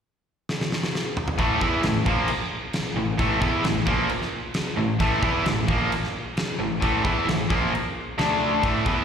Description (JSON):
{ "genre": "hard rock", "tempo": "132 BPM", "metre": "4/4", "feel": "straight", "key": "unclear", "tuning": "A4 = 440 Hz", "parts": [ { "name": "huge arena drum kit", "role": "drums", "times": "0.5-9.0 s", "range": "crash cymbal, kick drum, snare drum, toms", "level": "-26 LUFS", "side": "equal", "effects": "none" }, { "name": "distorted electric guitar", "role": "riff", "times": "1.4-9.0 s", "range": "A2 to E4", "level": "-26 LUFS", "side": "right 8 dB", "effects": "overdrive, slapback echo" }, { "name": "overdriven electric guitar", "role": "riff", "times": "1.4-9.0 s", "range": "A2 to E4", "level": "-26 LUFS", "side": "left 9 dB", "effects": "slapback echo" }, { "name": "picked electric bass", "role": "bass", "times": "1.4-9.0 s", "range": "A1 to E2", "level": "-29 LUFS", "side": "equal", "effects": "none" } ], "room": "light reverb, small room ambience", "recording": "live gig heard through the venue's PA, recital hall reverb", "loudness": "-21 LUFS", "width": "side -7 dB against mid", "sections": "0.0-1.4 A section; 1.4-9.0 B section", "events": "drum fill 0.5-1.4", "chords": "0.0 N.C.; 1.4 A5; 8.2 D5", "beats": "0.03 0.48 0.93 | 1.38 1.84 2.29 2.74 | 3.19 3.65 4.10 4.55 | 5.01 5.46 5.92 6.37 | 6.83 7.28 7.74 8.19 | 8.64" }